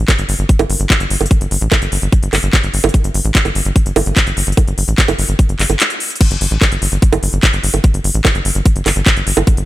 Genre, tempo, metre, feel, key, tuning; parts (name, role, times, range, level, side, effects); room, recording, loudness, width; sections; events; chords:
psychedelic trance; 147 BPM; 4/4; straight; A4 = 440 Hz
tight sequencer bass; bass; 0.0-9.6 s; G1 to A1; -17 LUFS; equal
drum and bass drum kit; drums; 0.1-9.7 s; bongos, crash cymbal, handclaps, hi-hat; -16 LUFS; right 2 dB
electronic kick drum; drums; 0.1-9.6 s; -12 LUFS; equal
digital ambience; -12 LUFS; side -16 dB against mid
0.0-6.2 A section; 6.2-9.7 B section
drop 6.2-9.7